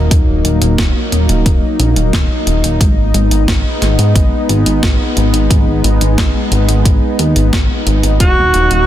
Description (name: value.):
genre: synthwave.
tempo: 89 BPM.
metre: 4/4.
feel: straight.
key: unclear.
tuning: A4 = 439 Hz.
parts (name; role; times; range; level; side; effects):
lush unison pad; sustained chords; 0.0-8.9 s; Gb3 to Eb4; -17 LUFS; left 1 dB; chorus, sidechain pumping.
chorused synth bass; bass; 0.0-8.9 s; Eb1 to Ab2; -13 LUFS; equal; sidechain pumping.
clean 12-bit digital drum machine; drums; 0.1-8.8 s; hi-hat, snare drum; -20 LUFS; equal; overdrive.
electronic kick drum; drums; 0.1-8.3 s; none; -13 LUFS; equal; none.
warm alto saxophone; melody; 8.2-8.9 s; Gb4; -11 LUFS; right 1 dB; tape echo.
room: light reverb.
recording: dense, heavily limited modern master.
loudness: -10 LUFS.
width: side -12 dB against mid.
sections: 0.0-8.9 A section.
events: none.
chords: 0.0 Ebm; 2.8 Abm; 8.2 Ebm.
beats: | 0.11 0.79 1.46 2.13 | 2.81 3.48 4.16 4.83 | 5.50 6.18 6.85 7.53 | 8.20.